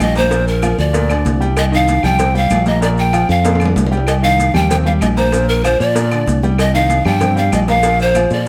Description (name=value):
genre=latin, salsa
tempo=191 BPM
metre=4/4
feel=straight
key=C minor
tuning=A4 = 440 Hz
part: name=breathy pan flute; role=melody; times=0.0-8.5 s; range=Bb4 to G5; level=-19 LUFS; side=equal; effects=slapback echo, plate reverb
part: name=bright baby grand piano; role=accompaniment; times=0.0-8.4 s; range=Bb2 to Bb5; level=-22 LUFS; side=equal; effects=none
part: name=modern bright fingered electric bass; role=bass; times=0.0-8.5 s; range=Bb1 to Bb2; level=-18 LUFS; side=equal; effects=none
part: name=claves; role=percussion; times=0.0-8.3 s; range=none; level=-33 LUFS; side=equal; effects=none
part: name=congas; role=percussion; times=0.0-8.5 s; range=none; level=-26 LUFS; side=equal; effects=none
part: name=cowbell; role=percussion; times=0.0-8.3 s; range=none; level=-28 LUFS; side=equal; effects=none
part: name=maracas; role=percussion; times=0.0-8.5 s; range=none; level=-36 LUFS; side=equal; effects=none
part: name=timbales and agogo bells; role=percussion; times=0.0-8.4 s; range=none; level=-28 LUFS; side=equal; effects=none
room=moderate studio reverb, RT60 0.7 s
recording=none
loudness=-14 LUFS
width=mono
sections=0.0-8.5 A section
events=drum fill 3.5-4.1, 8.3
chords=0.3 Bb; 1.6 Cm; 2.8 Bb; 4.1 Cm; 5.3 Bb; 6.6 Cm; 7.8 Bb